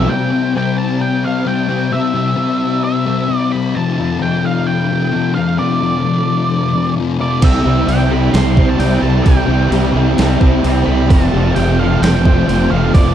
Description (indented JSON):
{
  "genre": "rock, shoegaze and dream pop",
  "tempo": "131 BPM",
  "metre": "4/4",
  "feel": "straight",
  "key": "C major",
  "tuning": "A4 = 440 Hz",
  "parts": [
    { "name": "octave-fuzz lead guitar", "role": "melody", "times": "0.0-13.1 s", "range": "D5 to C6", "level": "-21 LUFS", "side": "right 3 dB", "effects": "distortion, tape echo" },
    { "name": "string machine, cellos", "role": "sustained chords", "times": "0.0-13.1 s", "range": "C3 to G5", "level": "-25 LUFS", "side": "right 2 dB", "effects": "ensemble chorus" },
    { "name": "direct-recorded clean electric guitar", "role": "arpeggios", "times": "0.0-0.6, 7.4-13.1 s", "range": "G4 to C5", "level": "-26 LUFS", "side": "left 5 dB", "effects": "ensemble chorus, tape echo" },
    { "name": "distorted electric guitar", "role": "riff", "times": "0.0-0.1, 7.4-13.1 s", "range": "F2 to C4", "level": "-22 LUFS", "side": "right 2 dB", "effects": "overdrive" },
    { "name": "overdriven electric guitar", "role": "riff", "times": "0.0-0.1, 7.4-13.1 s", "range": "F2 to F4", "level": "-21 LUFS", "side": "right 13 dB", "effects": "reverse reverb" },
    { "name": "thick fuzz guitar", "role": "riff", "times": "0.0-13.1 s", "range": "F2 to C4", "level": "-16 LUFS", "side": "left 6 dB", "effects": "distortion, analog chorus" },
    { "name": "fuzz fingered electric bass", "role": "bass", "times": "0.0-0.1, 7.4-13.1 s", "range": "F1 to C2", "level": "-16 LUFS", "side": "right 1 dB", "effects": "overdrive" },
    { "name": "gated 80s digital drum machine", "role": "drums", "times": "7.4-13.1 s", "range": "crash cymbal, hi-hat, kick drum, snare drum", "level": "-14 LUFS", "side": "right 1 dB", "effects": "gated reverb, gated reverb snare" }
  ],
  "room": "little or no reverb",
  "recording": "dark, warm production",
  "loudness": "-12 LUFS",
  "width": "side -10 dB against mid",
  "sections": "0.1-13.1 A section",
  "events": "none",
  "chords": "0.1 C; 3.8 F6; 7.4 C; 11.1 F6"
}